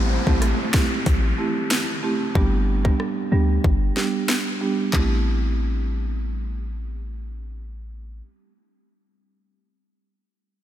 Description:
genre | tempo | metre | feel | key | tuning
dancehall | 93 BPM | 4/4 | straight | A minor | A4 = 441 Hz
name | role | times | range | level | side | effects
clean 808-style bass | bass | 0.0-8.2 s | G1 to D2 | -23 LUFS | left 1 dB | none
downlifter | sound effects | 0.0-4.9 s | none | -30 LUFS | equal | none
marimba with medium mallets | accompaniment | 0.3-8.2 s | G3 to G4 | -25 LUFS | right 4 dB | low-pass filter
island pop drum kit | drums | 0.3-5.1 s | finger snaps, handclaps, hi-hat, kick drum, rim click, snare drum | -24 LUFS | equal | none
room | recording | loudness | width
light reverb, digital ambience | none | -20 LUFS | side -12 dB against mid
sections
0.0-4.9 A section; 4.9-7.5 B section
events
filter sweep on marimba 0.0-4.9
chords
0.0 Am7; 2.4 G; 4.9 Am7

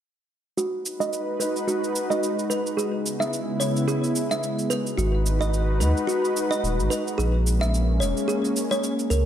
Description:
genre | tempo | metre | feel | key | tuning
sunset chillout | 109 BPM | 4/4 | swing 57% on 16ths | G# minor | A4 = 439 Hz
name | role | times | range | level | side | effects
lush unison pad | sustained chords | 1.1-9.3 s | C#3 to B4 | -26 LUFS | left 1 dB | chorus, vintage 12-bit sampler grit
kalimba | arpeggios | 0.6-9.2 s | F#4 to E5 | -27 LUFS | right 2 dB | low-pass filter, ping-pong delay
cabasa | drums | 0.6-9.2 s | none | -33 LUFS | right 2 dB | overdrive
warm sub bass | bass | 5.0-9.3 s | D#1 to D#2 | -22 LUFS | equal | none
room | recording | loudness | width
moderate recital hall reverb, RT60 1.6 s, digital ambience | none | -22 LUFS | side -10 dB against mid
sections
0.6-9.3 A section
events
filter sweep on kalimba 0.6-9.3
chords
0.6 G#m7; 2.8 C#m7; 4.7 G#m7; 7.2 A#m7

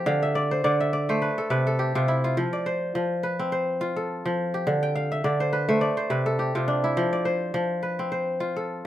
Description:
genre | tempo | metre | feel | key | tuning
west african traditional | 104 BPM | 4/4 | swing 56% on 16ths | F lydian | A4 = 440 Hz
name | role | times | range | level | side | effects
kora | solo | 0.0-8.9 s | C3 to G5 | -23 LUFS | equal | none
room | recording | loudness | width
light reverb | minimal, uncompressed stereo recording | -23 LUFS | side -12 dB against mid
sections
0.0-8.9 A section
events
kora fill 0.1-2.4, 4.8-7.0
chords
0.1 D5; 1.2 N.C.; 2.4 F; 4.7 D5; 5.8 N.C.; 7.0 F

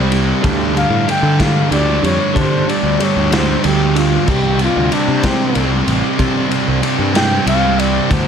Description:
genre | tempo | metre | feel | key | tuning
quiet-loud alternative rock | 63 BPM (dotted quarters) | 6/8 | straight | unclear | A4 = 441 Hz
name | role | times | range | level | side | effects
breathy flugelhorn | melody | 0.0-8.3 s | C4 to G5 | -19 LUFS | left 3 dB | none
electric guitar through a small old amp | arpeggios | 0.0-4.2 s | C3 to D4 | -24 LUFS | right 4 dB | phaser, tape echo
thick fuzz guitar | riff | 0.0-8.3 s | C3 to D4 | -20 LUFS | left 13 dB | distortion
thick fuzz guitar | riff | 0.0-8.3 s | G2 to C4 | -18 LUFS | right 13 dB | distortion
fuzz picked electric bass | bass | 0.0-8.3 s | A1 to D3 | -18 LUFS | equal | overdrive
raw garage drum kit | drums | 0.1-8.3 s | crash cymbal, kick drum, ride cymbal, snare drum | -20 LUFS | left 1 dB | none
room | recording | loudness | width
small room ambience | none | -12 LUFS | side -7 dB against mid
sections
0.0-8.3 A section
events
flugelhorn solo 0.0-8.3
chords
0.4 Gsus2/D; 4.3 Csus2

